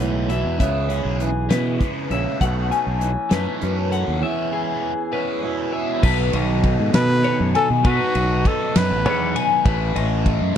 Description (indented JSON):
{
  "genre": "math rock and midwest emo",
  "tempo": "66 BPM (dotted quarters)",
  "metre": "6/8",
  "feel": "straight",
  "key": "unclear",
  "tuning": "A4 = 440 Hz",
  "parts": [
    { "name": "twangy electric guitar", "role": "accompaniment", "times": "0.0-7.8 s", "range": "E2 to E4", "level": "-28 LUFS", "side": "right 8 dB", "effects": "spring reverb" },
    { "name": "twelve-string electric guitar", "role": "arpeggios", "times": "0.0-10.6 s", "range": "G#4 to G#5", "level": "-25 LUFS", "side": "left 9 dB", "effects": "spring reverb" },
    { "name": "overdriven electric guitar", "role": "riff", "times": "0.0-10.6 s", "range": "A2 to A4", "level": "-26 LUFS", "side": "right 1 dB", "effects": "phaser" },
    { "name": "growling fingered electric bass", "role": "bass", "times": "0.0-10.6 s", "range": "A1 to B2", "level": "-22 LUFS", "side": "equal", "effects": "overdrive" },
    { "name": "loose indie drum kit", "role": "drums", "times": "0.0-10.4 s", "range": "crash cymbal, hi-hat, kick drum, ride cymbal, snare drum", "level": "-23 LUFS", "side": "equal", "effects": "none" },
    { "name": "warm trumpet", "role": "melody", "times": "6.9-9.4 s", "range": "F#4 to B4", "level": "-23 LUFS", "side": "right 1 dB", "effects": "tape echo" }
  ],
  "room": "little or no reverb",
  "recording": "dry, close 1970s-style studio recording",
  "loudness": "-18 LUFS",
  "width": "side -9 dB against mid",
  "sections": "0.0-6.0 A section; 6.0-10.6 B section",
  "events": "none",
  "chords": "0.0 E; 0.6 C#m7; 2.4 B9sus4; 4.2 E6; 6.0 B9; 9.7 Aadd9",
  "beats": "| 0.60 1.51 | 2.41 3.32 | 4.22 5.13 | 6.04 6.94 | 7.84 8.75 | 9.65 10.56"
}